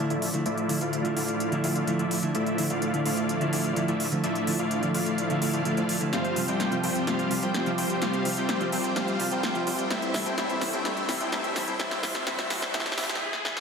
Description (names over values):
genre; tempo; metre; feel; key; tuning
EDM, festival progressive house; 127 BPM; 4/4; straight; D minor; A4 = 439 Hz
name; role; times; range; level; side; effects
mellow electric guitar; accompaniment; 0.0-13.6 s; C3 to F4; -32 LUFS; right 2 dB; digital delay
lush unison pad; sustained chords; 0.0-13.2 s; C3 to G4; -33 LUFS; right 1 dB; chorus, phaser
dense compressed supersaw; riff; 0.0-13.2 s; G3 to G5; -28 LUFS; equal; low-pass filter, digital delay
fat analog bass; bass; 0.0-13.2 s; A1 to D2; -40 LUFS; left 1 dB; none
big-room dance drum kit; drums; 0.1-13.6 s; hi-hat, snare drum; -32 LUFS; left 1 dB; none
riser; sound effects; 9.4-13.6 s; none; -39 LUFS; left 2 dB; none
room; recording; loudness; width
moderate lush hall reverb, RT60 2.2 s; dense, heavily limited modern master, high-pass filter; -24 LUFS; side -6 dB against mid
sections
0.0-13.6 A section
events
build-up 0.0-13.6; filter sweep on supersaw synth 0.0-13.6; filter sweep 0.0-13.6; drum fill 6.1-13.2, 13.3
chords
0.0 Dmadd9; 6.1 Csus4; 9.9 Am